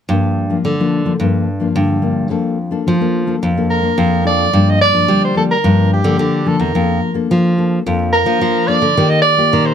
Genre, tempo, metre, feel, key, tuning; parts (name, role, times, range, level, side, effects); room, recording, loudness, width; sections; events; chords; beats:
samba and choro; 108 BPM; 4/4; straight; G minor; A4 = 440 Hz
nylon-string guitar; accompaniment; 0.1-9.7 s; G2 to A4; -16 LUFS; left 4 dB
nylon-string guitar; bass; 0.1-9.7 s; E2 to G3; -17 LUFS; right 2 dB
warm soprano saxophone; melody; 3.7-9.7 s; G4 to Eb5; -15 LUFS; right 2 dB
light reverb; close, detailed microphones; -12 LUFS; side -8 dB against mid
0.1-4.5 A section; 4.5-9.7 B section
0.1 Gm7; 2.3 Bbmaj7/F; 4.5 Gm7; 6.8 Bbmaj7/F; 9.0 Ebadd9
| 0.09 0.64 1.20 1.76 | 2.31 2.87 3.42 3.98 | 4.54 5.09 5.65 6.20 | 6.76 7.31 7.87 8.42 | 8.98 9.53